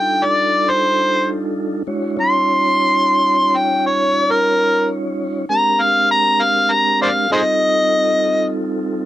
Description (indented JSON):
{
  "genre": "blues",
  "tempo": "66 BPM (dotted quarters)",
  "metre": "12/8",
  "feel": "straight",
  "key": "unclear",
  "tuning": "A4 = 440 Hz",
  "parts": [
    { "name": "overdriven harmonica", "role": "melody", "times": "0.0-8.5 s", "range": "Ab4 to C6", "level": "-14 LUFS", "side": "equal", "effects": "none" },
    { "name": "mellow tonewheel organ", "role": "sustained chords", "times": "0.0-9.1 s", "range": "G3 to Db5", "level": "-21 LUFS", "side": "right 2 dB", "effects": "slow rotary speaker" }
  ],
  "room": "moderate small room reverb, RT60 0.6 s",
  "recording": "none",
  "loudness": "-14 LUFS",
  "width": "side -14 dB against mid",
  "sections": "0.0-9.1 A section",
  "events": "harmonica solo 0.0-9.1",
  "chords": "0.0 F13; 1.9 Eb13; 5.5 Bb13; 7.3 F9"
}